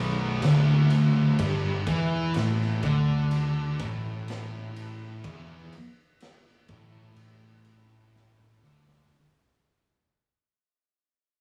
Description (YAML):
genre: stoner and doom metal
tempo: 62 BPM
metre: 4/4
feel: straight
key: unclear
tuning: A4 = 440 Hz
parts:
  - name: fuzz guitar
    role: riff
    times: 0.0-9.1 s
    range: B1 to E3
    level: -34 LUFS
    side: equal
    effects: none
  - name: thick fuzz guitar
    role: riff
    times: 0.0-9.1 s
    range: B1 to E3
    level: -31 LUFS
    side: equal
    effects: none
  - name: thick fuzz guitar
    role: riff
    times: 0.0-9.1 s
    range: B1 to E3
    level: -31 LUFS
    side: equal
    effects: distortion
  - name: fuzz picked electric bass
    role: bass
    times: 0.0-9.1 s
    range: B0 to E2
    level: -34 LUFS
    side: equal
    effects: overdrive
  - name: raw garage drum kit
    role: drums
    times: 0.4-9.1 s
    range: kick drum, ride cymbal, snare drum, toms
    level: -39 LUFS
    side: equal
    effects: none
room: light reverb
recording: rough rehearsal-room recording, studio ambience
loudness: -25 LUFS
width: mono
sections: 0.0-9.1 A section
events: fade-out 0.0-9.1; drum fill 8.1-9.1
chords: 0.0 Bm; 1.4 G5